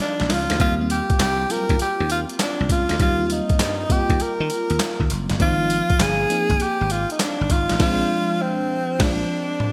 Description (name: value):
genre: R&B, new jack swing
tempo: 100 BPM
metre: 4/4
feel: swing 67% on 16ths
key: unclear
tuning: A4 = 436 Hz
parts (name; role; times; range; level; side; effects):
- warm tenor saxophone; melody; 0.0-9.7 s; C4 to Bb4; -25 LUFS; equal; none
- FM electric piano with soft pad layer; accompaniment; 0.0-9.7 s; F3 to F4; -29 LUFS; equal; chorus, phaser
- boom bap sampler-style drum kit; drums; 0.0-9.7 s; crash cymbal, handclaps, hi-hat, kick drum, snare drum, tambourine, toms; -25 LUFS; equal; gated reverb
- dry thumbed slap bass; bass; 0.2-9.2 s; Gb1 to Eb3; -27 LUFS; equal; none
room: moderate lush hall reverb, RT60 1.8 s, digital ambience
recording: bright 1980s-style digital production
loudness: -21 LUFS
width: mono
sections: 0.0-9.7 A section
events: drum fill 0.0-0.6, 9.0-9.7; band accent 7.8-9.7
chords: 0.0 Ab69 (rootless); 0.6 Eb6; 5.4 Ab69; 7.8 Bb9